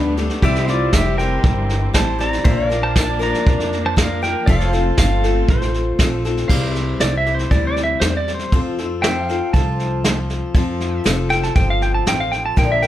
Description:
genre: honky-tonk and classic country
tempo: 118 BPM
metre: 4/4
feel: straight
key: unclear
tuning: A4 = 440 Hz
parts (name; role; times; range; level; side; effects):
- pedal steel guitar; melody; 0.0-12.9 s; D4 to Bb5; -22 LUFS; right 1 dB; none
- picked steel-string acoustic guitar; accompaniment; 0.0-12.9 s; Bb2 to Bb4; -23 LUFS; left 4 dB; none
- pedal steel guitar; sustained chords; 0.0-12.5 s; B4 to F5; -31 LUFS; left 1 dB; none
- rich symphonic string section; sustained chords; 0.0-6.5 s; E3 to D4; -29 LUFS; right 1 dB; none
- upright bass; bass; 0.0-12.9 s; F1 to F2; -22 LUFS; equal; none
- vintage brush drum kit; drums; 0.2-12.9 s; crash cymbal, hi-hat, kick drum, snare drum; -19 LUFS; equal; none
room: light reverb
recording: none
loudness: -15 LUFS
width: side -13 dB against mid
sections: 0.0-6.5 A section; 6.5-12.9 B section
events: pedal steel guitar solo 6.5-12.9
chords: 0.4 C; 2.5 Bb; 4.5 F; 6.5 C; 8.5 F

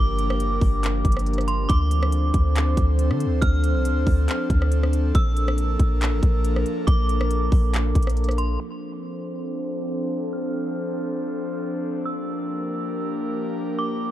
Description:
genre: hip hop, atmospheric cloud-rap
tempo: 139 BPM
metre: 4/4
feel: half-time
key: D minor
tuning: A4 = 439 Hz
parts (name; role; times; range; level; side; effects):
- metallic FM bell; melody; 0.0-14.1 s; C6 to F6; -31 LUFS; right 2 dB; chorus, low-pass filter, digital delay
- airy breathy pad; sustained chords; 0.0-14.1 s; F3 to C5; -26 LUFS; left 1 dB; chorus, sidechain pumping, low-pass filter
- soft 808-style bass; bass; 0.0-8.6 s; G1 to D3; -22 LUFS; equal; none
- trap drum kit; drums; 0.2-8.5 s; handclaps, hi-hat, kick drum, rim click; -22 LUFS; equal; none
room: little or no reverb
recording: dark, warm production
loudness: -20 LUFS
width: side -13 dB against mid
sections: 0.0-8.6 A section; 8.6-14.1 B section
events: filter sweep 8.6-14.1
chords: 0.0 Gm7; 1.7 Dm7; 5.1 Bbmaj7; 8.6 Dm7; 12.1 Gm7

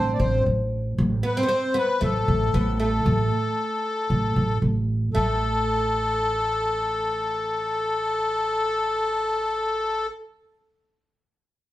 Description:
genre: Arabic maqam ensemble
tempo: 115 BPM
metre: 4/4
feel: straight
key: A minor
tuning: A4 = 440 Hz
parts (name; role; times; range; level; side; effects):
- accordion; melody; 0.0-10.1 s; A4 to D5; -24 LUFS; left 2 dB; light tremolo tuning
- oud; second line; 0.0-10.1 s; A3 to C4; -28 LUFS; equal; none
- upright bass; bass; 0.0-10.1 s; A1; -24 LUFS; right 1 dB; none
room: wet studio reverb, RT60 0.6 s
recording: heard from further back in the room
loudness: -21 LUFS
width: side -14 dB against mid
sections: 0.0-5.1 A section; 5.1-9.3 B section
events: none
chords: none

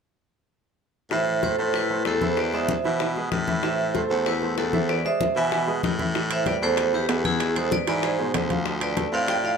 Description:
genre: latin, salsa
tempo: 191 BPM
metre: 4/4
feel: straight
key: A harmonic minor, A minor from 6.1 s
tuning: A4 = 440 Hz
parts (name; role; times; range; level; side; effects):
- vibraphone with hard mallets; melody; 1.1-9.6 s; E4 to G#5; -25 LUFS; right 2 dB; none
- bright concert grand piano; accompaniment; 1.1-9.6 s; B2 to F5; -30 LUFS; right 3 dB; none
- raspy baritone saxophone; bass; 1.1-9.6 s; D2 to B2; -27 LUFS; left 1 dB; none
- bongos; percussion; 1.1-9.4 s; none; -33 LUFS; left 8 dB; none
- congas; percussion; 1.1-9.6 s; none; -31 LUFS; left 5 dB; none
- timbales; percussion; 6.3-9.4 s; none; -31 LUFS; right 6 dB; none
room: moderate studio reverb, RT60 0.5 s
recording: none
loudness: -21 LUFS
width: side -6 dB against mid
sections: 1.1-6.1 A section; 6.1-9.6 B section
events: none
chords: 1.1 Am; 2.4 E7; 3.6 Am; 4.9 E7; 6.1 Am9; 7.4 E7b9b13; 8.7 Dm7

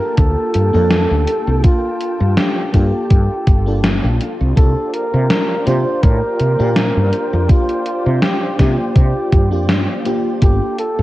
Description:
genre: vaporwave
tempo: 82 BPM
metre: 4/4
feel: swing 54% on 16ths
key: unclear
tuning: A4 = 440 Hz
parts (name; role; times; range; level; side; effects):
- breathy flugelhorn; melody; 0.0-11.0 s; F4 to C5; -21 LUFS; equal; tape echo
- FM electric piano with soft pad layer; accompaniment; 0.0-11.0 s; Bb3 to A4; -23 LUFS; equal; lush chorus
- soft string machine; sustained chords; 0.0-11.0 s; Bb3 to A5; -27 LUFS; equal; ensemble chorus, vintage 12-bit sampler grit
- woody fretless electric bass; bass; 0.2-11.0 s; G1 to C3; -16 LUFS; equal; lush chorus
- electronic kick drum; drums; 0.2-10.6 s; none; -12 LUFS; equal; none
- gated 80s digital drum machine; drums; 0.2-10.9 s; hi-hat, snare drum; -19 LUFS; equal; gated reverb, gated reverb snare
room: light reverb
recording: cassette tape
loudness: -13 LUFS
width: side -16 dB against mid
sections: 0.0-11.0 A section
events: none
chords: 0.0 Gm9; 4.2 C9sus4; 10.4 Gm9

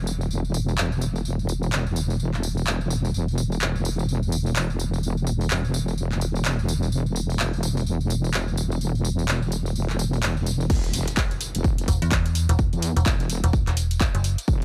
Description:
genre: bass house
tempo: 127 BPM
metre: 4/4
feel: swing 60% on 16ths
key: unclear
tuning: A4 = 441 Hz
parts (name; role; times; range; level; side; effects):
- wobble bass; bass; 0.0-14.6 s; E1 to E2; -26 LUFS; equal; chorus, overdrive, sidechain pumping
- house drum kit; drums; 0.1-14.6 s; crash cymbal, handclaps, hi-hat, tambourine; -32 LUFS; equal; none
- electronic kick drum; drums; 10.7-14.6 s; none; -25 LUFS; equal; none
- impact; sound effects; 10.7-12.6 s; none; -36 LUFS; equal; none
- metallic FM bass; bass; 11.9-14.4 s; E1 to E2; -24 LUFS; equal; sidechain pumping
room: little or no reverb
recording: none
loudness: -24 LUFS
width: mono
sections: 0.0-10.7 A section; 10.7-14.6 B section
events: drop 10.7-14.6; impact 10.7-12.6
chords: none

